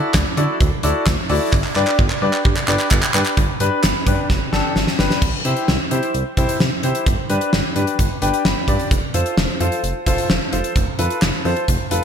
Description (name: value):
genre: synth-pop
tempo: 130 BPM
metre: 4/4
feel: straight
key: G major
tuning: A4 = 440 Hz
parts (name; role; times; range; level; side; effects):
- clear concert grand piano; accompaniment; 0.0-12.0 s; D4 to B5; -21 LUFS; left 1 dB; lush chorus
- smooth synth bass; bass; 0.1-12.0 s; F1 to D3; -22 LUFS; right 1 dB; none
- gated 80s drum kit; drums; 0.1-12.0 s; crash cymbal, handclaps, hi-hat, kick drum, snare drum; -18 LUFS; equal; gated reverb
room: moderate lush hall reverb, RT60 1.8 s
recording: bright 1980s-style digital production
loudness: -16 LUFS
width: side -7 dB against mid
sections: 0.0-3.4 A section; 3.4-5.2 B section; 5.2-12.0 C section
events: drum fill 1.5-3.4, 4.3-5.2; grand piano fill 8.0-8.9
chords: 0.0 Dadd9; 1.5 G; 5.2 C; 7.1 G; 8.9 F